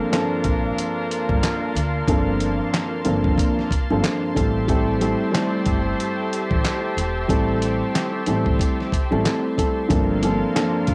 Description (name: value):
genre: hip hop, boom-bap hip-hop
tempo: 92 BPM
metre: 4/4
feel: swing 59% on 16ths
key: G dorian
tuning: A4 = 436 Hz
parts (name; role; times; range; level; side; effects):
- dark grand piano; accompaniment; 0.0-10.9 s; G2 to A4; -25 LUFS; equal; cassette tape, high-pass filter, low-pass filter
- lush unison pad; sustained chords; 0.0-10.9 s; Bb3 to C6; -34 LUFS; equal; chorus, high-pass filter, low-pass filter, cassette tape
- clear trumpet section; stabs; 0.0-10.9 s; D4 to C5; -32 LUFS; equal; high-pass filter, low-pass filter, cassette tape, analog delay
- dusty soul sampler-style drum kit; drums; 0.1-10.9 s; handclaps, hi-hat, kick drum, snare drum; -26 LUFS; equal; cassette tape
- upright bass; bass; 0.4-10.9 s; E1 to D2; -28 LUFS; equal; none
room: light reverb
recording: home recording on cassette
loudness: -21 LUFS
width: mono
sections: 0.0-10.9 A section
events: none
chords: 0.0 Gm11; 4.4 Am7; 9.9 Gm11